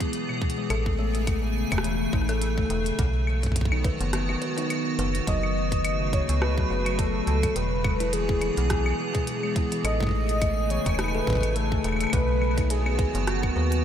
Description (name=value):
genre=IDM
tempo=105 BPM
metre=4/4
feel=swing 56% on 16ths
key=unclear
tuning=A4 = 440 Hz
part: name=icy glass pad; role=sustained chords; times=0.0-13.8 s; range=C#3 to G#5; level=-30 LUFS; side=equal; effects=chorus, built-in reverb
part: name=electronic kick drum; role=drums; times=0.0-13.5 s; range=none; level=-28 LUFS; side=equal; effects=none
part: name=glitchy drum kit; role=drums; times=0.0-13.8 s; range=claves, hi-hat, rim click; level=-34 LUFS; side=equal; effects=ping-pong delay
part: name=buzzing kalimba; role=arpeggios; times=0.3-13.6 s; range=B2 to B4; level=-31 LUFS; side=left 4 dB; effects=vintage 12-bit sampler grit, ping-pong delay
part: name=metallic FM bass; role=bass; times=0.7-13.8 s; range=E1 to D#2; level=-27 LUFS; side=equal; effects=none
part: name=warm velvety synth lead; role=melody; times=5.3-13.8 s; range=F#4 to D#5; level=-29 LUFS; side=equal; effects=chorus, vintage 12-bit sampler grit, ping-pong delay
room=moderate huge ambient reverb, RT60 7.7 s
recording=dreamy mix soaked in reverb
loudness=-23 LUFS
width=side -9 dB against mid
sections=0.0-13.8 A section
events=kick drops out 4.1-5.3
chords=0.0 E; 0.7 Amaj7; 3.0 B; 5.3 F#m; 7.6 E; 9.8 Amaj7; 12.1 B